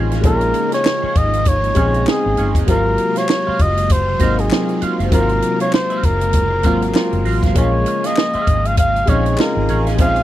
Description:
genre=lush 1970s-style soul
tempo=98 BPM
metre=4/4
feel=swing 58% on 16ths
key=Bb minor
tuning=A4 = 437 Hz
part: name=warm baby grand piano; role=accompaniment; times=0.0-10.2 s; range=C3 to Ab4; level=-22 LUFS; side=left 1 dB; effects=none
part: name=string machine, violins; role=sustained chords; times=0.0-10.2 s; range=C3 to Ab4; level=-26 LUFS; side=equal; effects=ensemble chorus
part: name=electric guitar through a small old amp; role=riff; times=0.0-10.2 s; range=F4 to F5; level=-28 LUFS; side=right 5 dB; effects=wah, spring reverb
part: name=vintage muted fingered electric bass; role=bass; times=0.0-10.2 s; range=Gb1 to Bb1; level=-19 LUFS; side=equal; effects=none
part: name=compact cocktail drum kit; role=drums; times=0.1-10.2 s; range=hi-hat, kick drum, snare drum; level=-17 LUFS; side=equal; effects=none
part: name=warm flugelhorn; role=melody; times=0.3-10.2 s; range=Ab4 to F5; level=-19 LUFS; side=equal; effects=none
part: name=group handclap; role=percussion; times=0.8-9.5 s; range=none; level=-29 LUFS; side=left 7 dB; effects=none
room=little or no reverb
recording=dry, close 1970s-style studio recording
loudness=-14 LUFS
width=side -13 dB against mid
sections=0.0-10.2 A section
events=none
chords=0.0 Bbm7; 2.7 Ab13; 7.6 Bbm7

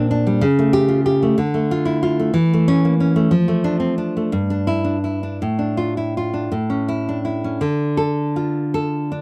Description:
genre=romantic piece for solo classical guitar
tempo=53-66 BPM (dotted quarters)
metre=6/8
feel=rubato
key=D minor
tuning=A4 = 440 Hz
part: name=nylon-string guitar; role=solo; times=0.0-9.2 s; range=G2 to A4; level=-19 LUFS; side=equal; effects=none
room=light reverb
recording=dry, close 1970s-style studio recording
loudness=-19 LUFS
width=mono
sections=0.0-7.6 A section; 7.6-9.2 B section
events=none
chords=0.5 A7/C#; 1.4 Dm; 2.4 A/E; 3.3 Dm/F; 4.3 Em7/G; 5.4 Dm/A; 6.5 A; 7.6 Dm

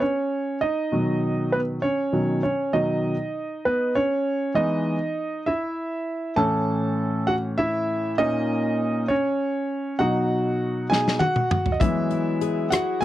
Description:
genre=six-eight pop ballad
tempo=66 BPM (dotted quarters)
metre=6/8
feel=straight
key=unclear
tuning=A4 = 440 Hz
part: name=clear grand piano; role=accompaniment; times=0.0-13.0 s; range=A2 to A5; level=-22 LUFS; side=right 1 dB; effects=none
part: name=modern studio drum kit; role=drums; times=10.9-13.0 s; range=hi-hat, kick drum, rim click, snare drum, toms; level=-23 LUFS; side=left 1 dB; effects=none
part: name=fingerpicked steel-string acoustic guitar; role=arpeggios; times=11.8-13.0 s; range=F#3 to G#4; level=-28 LUFS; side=left 18 dB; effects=none
room=little or no reverb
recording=dry, close 1970s-style studio recording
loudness=-21 LUFS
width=side -14 dB against mid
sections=0.0-4.6 A section; 4.6-13.0 B section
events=grand piano solo 0.0-4.6, 4.6-13.0; drum fill 10.9-11.8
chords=0.0 N.C.; 0.9 B; 4.6 E; 6.4 A; 8.2 A#madd11; 10.0 B; 11.8 Eadd9

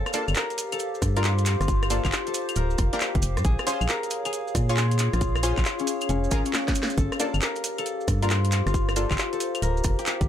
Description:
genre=UK garage, two-step garage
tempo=136 BPM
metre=4/4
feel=swing 66% on 16ths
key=unclear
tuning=A4 = 440 Hz
part: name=concert harp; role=melody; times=0.0-10.3 s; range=Db4 to C5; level=-30 LUFS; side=left 4 dB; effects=ping-pong delay
part: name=organ-like FM bass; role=bass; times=0.0-10.3 s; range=D1 to Bb2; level=-25 LUFS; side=equal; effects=sidechain pumping
part: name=warbly tape-like pad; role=texture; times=0.0-10.3 s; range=G4 to F5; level=-33 LUFS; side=equal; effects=chorus, built-in reverb, sidechain pumping
part: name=punchy chord stab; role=stabs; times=0.1-9.1 s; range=Bb3 to Db5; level=-31 LUFS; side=equal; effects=chorus, dub echo
part: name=garage drum kit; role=drums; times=0.1-10.3 s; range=claves, handclaps, hi-hat, rim click, snare drum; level=-29 LUFS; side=left 1 dB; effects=none
part: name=maracas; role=percussion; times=0.1-10.3 s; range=none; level=-36 LUFS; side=right 5 dB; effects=none
part: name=electronic kick drum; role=drums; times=1.0-10.3 s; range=none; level=-26 LUFS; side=equal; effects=none
room=digital ambience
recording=none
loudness=-22 LUFS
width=side -10 dB against mid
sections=0.0-10.3 A section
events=drum fill 6.5-7.0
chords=0.0 Gm9; 3.4 Bbm9; 7.0 Gm9

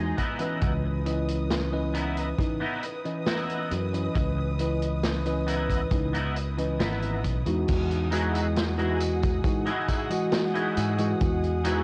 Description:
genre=vaporwave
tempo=68 BPM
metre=4/4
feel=straight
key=E major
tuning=A4 = 440 Hz
part: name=bell-like tine electric piano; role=accompaniment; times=0.0-11.8 s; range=E3 to D#5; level=-32 LUFS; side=equal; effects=subtle chorus, analog delay
part: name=warm studio string section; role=sustained chords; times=0.0-11.8 s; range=G#4 to D#6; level=-41 LUFS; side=equal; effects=vintage 12-bit sampler grit
part: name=clean electric guitar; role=riff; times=0.0-11.8 s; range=G#3 to G#4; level=-35 LUFS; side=equal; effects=ensemble chorus, analog delay
part: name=fretless electric bass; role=bass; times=0.0-11.8 s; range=G#1 to G#2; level=-31 LUFS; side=equal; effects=none
part: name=kick drum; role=drums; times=0.2-11.4 s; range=none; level=-31 LUFS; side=equal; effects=vintage 12-bit sampler grit
part: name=vintage drum kit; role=drums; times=0.2-11.8 s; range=crash cymbal, hi-hat, snare drum, tambourine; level=-36 LUFS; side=equal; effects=vintage 12-bit sampler grit
room=light reverb, small room ambience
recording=cassette tape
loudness=-27 LUFS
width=mono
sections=0.0-7.7 A section; 7.7-11.8 B section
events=none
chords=0.2 C#m9; 7.7 Emaj9

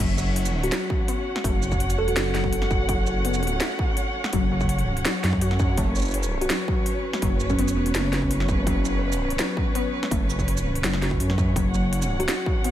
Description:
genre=half-time drum and bass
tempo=166 BPM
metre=4/4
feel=half-time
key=unclear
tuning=A4 = 441 Hz
part: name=warm studio cello section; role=sustained chords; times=0.0-12.7 s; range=F#3 to F#5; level=-30 LUFS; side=equal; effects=vintage 12-bit sampler grit, sidechain pumping
part: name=warbly dusty pluck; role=arpeggios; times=0.0-12.7 s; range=F#3 to F#4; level=-32 LUFS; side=left 5 dB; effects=chorus, phaser, ping-pong delay
part: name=dark detuned saw bass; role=bass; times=0.0-12.3 s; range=F#1 to F#2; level=-25 LUFS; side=equal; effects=none
part: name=drum and bass drum kit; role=drums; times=0.0-12.7 s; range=crash cymbal, hi-hat, shaker, snare drum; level=-29 LUFS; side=equal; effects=studio reverb
part: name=electronic kick drum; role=drums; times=0.0-12.5 s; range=none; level=-26 LUFS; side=equal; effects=distortion, studio reverb
part: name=kalimba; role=melody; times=0.6-2.2, 6.4-7.9, 12.2-12.7 s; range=B3 to A4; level=-30 LUFS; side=right 1 dB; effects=vintage 12-bit sampler grit, ping-pong delay
room=light reverb, digital ambience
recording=none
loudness=-21 LUFS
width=side -12 dB against mid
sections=0.0-12.7 A section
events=drop 0.0-12.7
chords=0.0 F#5

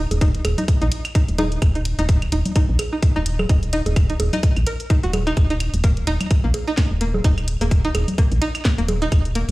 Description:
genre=minimal techno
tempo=128 BPM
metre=4/4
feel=swing 57% on 16ths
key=unclear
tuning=A4 = 436 Hz
part: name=string-like resonator pluck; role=riff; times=0.0-9.4 s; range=Bb3 to Bb4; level=-26 LUFS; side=right 1 dB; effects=chorus, sidechain pumping, digital delay
part: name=woody FM bass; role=bass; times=0.0-9.5 s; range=Eb1 to Bb1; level=-21 LUFS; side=equal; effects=tube saturation, sidechain pumping
part: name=garage drum kit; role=drums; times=0.1-9.5 s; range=hi-hat, snare drum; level=-30 LUFS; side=equal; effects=none
part: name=bongos, claves and congas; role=percussion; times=0.1-9.2 s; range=none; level=-28 LUFS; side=right 2 dB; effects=digital delay
part: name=electronic kick drum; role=drums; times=0.2-9.2 s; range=none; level=-16 LUFS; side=equal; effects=none
room=light reverb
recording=played on a big sound system in a bare room, stone room reverb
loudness=-17 LUFS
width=side -20 dB against mid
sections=0.0-9.5 A section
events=none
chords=0.0 Eb5

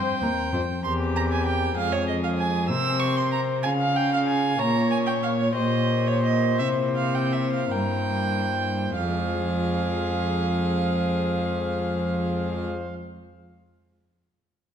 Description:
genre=classical, baroque-style sonata movement with continuo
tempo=46-65 BPM (dotted quarters)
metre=6/8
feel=rubato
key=F minor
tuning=A4 = 442 Hz
part: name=dark violin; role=melody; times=0.0-12.6 s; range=G4 to F5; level=-30 LUFS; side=left 7 dB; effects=none
part: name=rich violin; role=second line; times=0.0-12.7 s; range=Db5 to E6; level=-28 LUFS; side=right 6 dB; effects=none
part: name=pipe organ, principal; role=accompaniment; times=0.0-12.9 s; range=Eb2 to F5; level=-28 LUFS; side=left 2 dB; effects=none
part: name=rich cello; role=bass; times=0.2-12.7 s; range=Eb2 to Db3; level=-27 LUFS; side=right 2 dB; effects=none
room=wet recital hall reverb, RT60 1.7 s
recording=none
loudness=-22 LUFS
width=side -8 dB against mid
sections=0.0-9.0 A section; 9.0-14.0 B section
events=slowing down 3.6-9.0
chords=0.0 Cm/Eb; 0.8 C7/E; 1.8 Fm; 2.7 C7; 3.6 Db; 4.6 Bbm; 5.6 Gdim/Bb; 6.6 C7; 9.0 Fm

